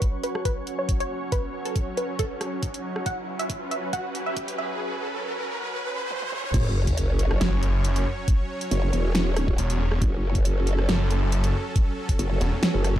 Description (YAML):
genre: heavy wobble dubstep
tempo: 138 BPM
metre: 4/4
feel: swing 53% on 16ths, half-time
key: F# minor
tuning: A4 = 439 Hz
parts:
  - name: wide unison pluck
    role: melody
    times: 0.0-4.7 s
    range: A4 to F#5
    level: -31 LUFS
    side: right 1 dB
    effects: digital delay
  - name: supersaw pad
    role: sustained chords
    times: 0.0-13.0 s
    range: F#3 to C#5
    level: -33 LUFS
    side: right 1 dB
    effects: sidechain pumping, low-pass filter
  - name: dubstep drum kit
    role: drums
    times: 0.0-12.9 s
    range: crash cymbal, hi-hat, rim click, snare drum, toms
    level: -29 LUFS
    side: right 1 dB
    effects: none
  - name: electronic kick drum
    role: drums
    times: 0.0-13.0 s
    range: none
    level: -24 LUFS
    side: equal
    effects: none
  - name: riser and sub drop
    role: sound effects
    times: 1.0-8.3 s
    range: none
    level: -32 LUFS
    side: equal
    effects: none
  - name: airy breathy pad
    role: texture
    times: 0.0-4.8 s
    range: C#4 to C#6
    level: -38 LUFS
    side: equal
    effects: chorus, sidechain pumping
  - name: growl bass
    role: bass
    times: 6.5-12.9 s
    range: E1 to F#1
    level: -23 LUFS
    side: equal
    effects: chorus, overdrive
  - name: snarling distorted saw bass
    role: bass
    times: 7.4-13.0 s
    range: E1 to F#1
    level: -23 LUFS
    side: equal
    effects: distortion, overdrive
room: little or no reverb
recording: dark, warm production, high-pass filter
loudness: -23 LUFS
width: side -12 dB against mid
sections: 0.0-6.5 A section; 6.5-13.0 B section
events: build-up 0.0-6.5; filter sweep on supersaw synth 0.0-6.5; filter sweep on synth pluck 0.0-6.5; filter sweep 0.0-6.5; riser 1.0-6.5; drum fill 3.1-4.8, 6.1-6.5; drop 6.5-13.0; impact 6.5-8.3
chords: 0.0 F#5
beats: 0.02 0.45 0.89 | 1.32 1.76 2.19 2.63 | 3.06 3.50 3.93 4.37 | 4.80 5.24 5.67 6.11 | 6.54 6.97 7.41 7.84 | 8.28 8.71 9.15 9.58 | 10.02 10.45 10.89 11.32 | 11.76 12.19 12.63